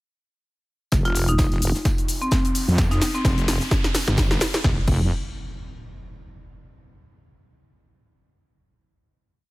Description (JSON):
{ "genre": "bass house", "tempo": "129 BPM", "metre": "4/4", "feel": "swing 56% on 16ths", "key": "unclear", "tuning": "A4 = 438 Hz", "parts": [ { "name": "wobble bass", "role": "bass", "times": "0.9-5.1 s", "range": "F1 to F2", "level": "-22 LUFS", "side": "equal", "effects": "chorus, tube saturation, sidechain pumping" }, { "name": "crisp fusion drum kit", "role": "drums", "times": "0.9-4.5 s", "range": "hi-hat, snare drum, tambourine", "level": "-37 LUFS", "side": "equal", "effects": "none" }, { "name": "electronic kick drum", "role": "drums", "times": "0.9-5.0 s", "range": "none", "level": "-23 LUFS", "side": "equal", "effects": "none" }, { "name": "house drum kit", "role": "drums", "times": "0.9-5.0 s", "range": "crash cymbal, hi-hat, shaker, snare drum", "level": "-26 LUFS", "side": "equal", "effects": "none" }, { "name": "riser and impact", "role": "sound effects", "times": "1.8-6.5 s", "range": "none", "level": "-34 LUFS", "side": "equal", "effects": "none" }, { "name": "marimba with medium hard mallets", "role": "melody", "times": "1.1-3.8 s", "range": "C4 to F4", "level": "-28 LUFS", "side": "equal", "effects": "tape echo" } ], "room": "small room ambience", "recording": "none", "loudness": "-19 LUFS", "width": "side -20 dB against mid", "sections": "0.9-4.6 build; 4.6-6.5 final note", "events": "build-up 0.9-4.6; drum fill 0.9-4.6; riser 1.8-4.6", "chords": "0.9 F5; 4.6 N.C." }